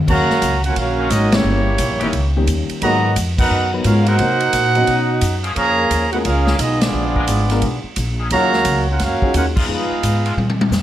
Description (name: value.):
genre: jazz, big band swing.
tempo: 175 BPM.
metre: 4/4.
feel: swing 64% on 8ths.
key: Eb minor.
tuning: A4 = 441 Hz.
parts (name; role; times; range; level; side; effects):
upright bass; bass; 0.0-10.8 s; G1 to C3; -19 LUFS; equal; none.
mellow trumpet section; melody; 0.1-10.6 s; Bb3 to Bb5; -19 LUFS; right 1 dB; none.
mellow trombone section; second line; 0.1-10.6 s; Bb2 to Gb4; -23 LUFS; right 3 dB; none.
swinging big-band drum kit; drums; 0.1-10.8 s; crash cymbal, hi-hat, kick drum, ride cymbal, snare drum, toms; -22 LUFS; equal; none.
muted trombone section; sustained chords; 1.0-10.3 s; D3 to Bb4; -28 LUFS; left 2 dB; none.
warm baby grand piano; accompaniment; 1.3-10.2 s; Db3 to Cb5; -24 LUFS; left 3 dB; none.
room: light reverb.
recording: none.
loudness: -14 LUFS.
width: side -12 dB against mid.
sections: 0.1-10.8 A section.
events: band accent 1.3, 3.3, 6.8, 9.5; drum fill 10.4-10.7.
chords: 0.1 Ebm9; 1.4 Eb7b9; 2.8 Abm9; 4.2 Cm7b5; 4.9 Badd9; 5.6 Bbm7; 6.9 Bb7b9; 8.3 Ebm9; 9.7 Fm7b5.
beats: | 0.07 0.42 0.76 1.10 | 1.45 1.79 2.13 2.48 | 2.82 3.16 3.51 3.85 | 4.19 4.54 4.88 5.22 | 5.57 5.91 6.25 6.60 | 6.94 7.28 7.63 7.97 | 8.31 8.66 9.00 9.35 | 9.69 10.04 10.38 10.73.